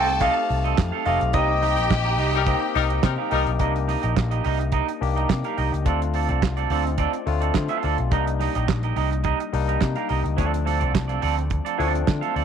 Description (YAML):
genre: disco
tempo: 106 BPM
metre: 4/4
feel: straight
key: C dorian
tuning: A4 = 440 Hz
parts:
  - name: clear concert grand piano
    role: melody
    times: 0.0-3.3 s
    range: Eb5 to G5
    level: -25 LUFS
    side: equal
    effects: none
  - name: rich studio string section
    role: second line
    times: 0.0-3.3 s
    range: G4 to A5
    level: -28 LUFS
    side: left 3 dB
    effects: none
  - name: barky tine electric piano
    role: accompaniment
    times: 0.0-12.4 s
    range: F3 to G5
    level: -29 LUFS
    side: left 14 dB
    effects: overdrive, auto-pan
  - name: clean electric guitar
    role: accompaniment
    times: 0.0-12.4 s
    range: C4 to F5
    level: -27 LUFS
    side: right 13 dB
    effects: none
  - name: picked electric bass with an envelope filter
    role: bass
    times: 0.0-12.4 s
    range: F1 to D3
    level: -24 LUFS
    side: equal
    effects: none
  - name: damped 70s drum kit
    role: drums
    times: 0.1-12.4 s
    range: handclaps, hi-hat, kick drum, snare drum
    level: -25 LUFS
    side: right 3 dB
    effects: none
  - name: clear horn section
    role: stabs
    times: 2.3-3.5 s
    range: G3 to Bb4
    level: -26 LUFS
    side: left 14 dB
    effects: none
room: light reverb, small room ambience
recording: 1960s-style stereo with parts hard left and right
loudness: -20 LUFS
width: side -8 dB against mid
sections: 0.0-3.6 A section; 3.6-12.4 B section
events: band accent 1.3-3.6; tine electric piano fill 2.8-3.6, 6.4-8.1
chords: 0.0 F7; 1.3 Cm7; 5.9 Dm7; 8.1 Cm7; 10.4 Dm7